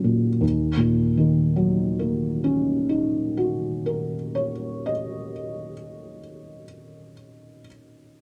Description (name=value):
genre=neoclassical minimalist piano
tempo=42 BPM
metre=4/4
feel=rubato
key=Eb minor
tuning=A4 = 439 Hz
part: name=felt-muted upright piano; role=solo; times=0.0-8.2 s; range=Eb2 to Eb5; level=-24 LUFS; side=equal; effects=none
room=little or no reverb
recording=close, detailed microphones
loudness=-24 LUFS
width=mono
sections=0.4-6.2 A section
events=none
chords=0.4 Ebm7